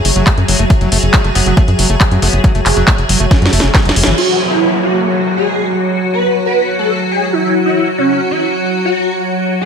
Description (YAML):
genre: psychedelic trance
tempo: 138 BPM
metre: 4/4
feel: straight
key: unclear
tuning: A4 = 440 Hz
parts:
  - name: evolving wavetable pad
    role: sustained chords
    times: 0.0-9.7 s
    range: F#3 to G#4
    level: -18 LUFS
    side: equal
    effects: ensemble chorus, built-in reverb, phaser, sidechain pumping
  - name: airy breathy pad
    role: texture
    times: 0.0-9.7 s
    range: F#4 to F#5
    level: -21 LUFS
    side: right 2 dB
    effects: chorus, sidechain pumping
  - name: tight sequencer bass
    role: bass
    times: 0.1-4.1 s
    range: F#1 to F#2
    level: -14 LUFS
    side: equal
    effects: none
  - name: techno drum kit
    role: drums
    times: 0.1-4.3 s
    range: crash cymbal, handclaps, hi-hat, snare drum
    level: -15 LUFS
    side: equal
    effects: none
  - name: screaming distorted acid line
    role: riff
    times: 0.2-4.2 s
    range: E3 to A3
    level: -21 LUFS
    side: moving between left 5 dB and right 5 dB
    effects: distortion, chorus, auto-pan, sidechain pumping, digital delay
  - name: electronic kick drum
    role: drums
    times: 0.3-3.8 s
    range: none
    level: -11 LUFS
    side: equal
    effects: none
  - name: metallic wobble bass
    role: second line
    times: 1.4-2.9 s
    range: F#3 to B3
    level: -27 LUFS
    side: left 2 dB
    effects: none
  - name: swarming rave lead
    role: melody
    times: 4.2-9.7 s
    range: C#4 to B4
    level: -16 LUFS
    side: equal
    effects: chorus, phaser, sidechain pumping, ping-pong delay
  - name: downlifter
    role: sound effects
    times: 4.2-7.7 s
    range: none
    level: -22 LUFS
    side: equal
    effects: none
room: moderate lush hall reverb, RT60 1.7 s, digital ambience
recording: none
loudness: -10 LUFS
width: side -6 dB against mid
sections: 0.0-4.2 A section; 4.2-9.7 B section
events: drum fill 3.3-4.2; band accent 4.0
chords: 0.0 F#5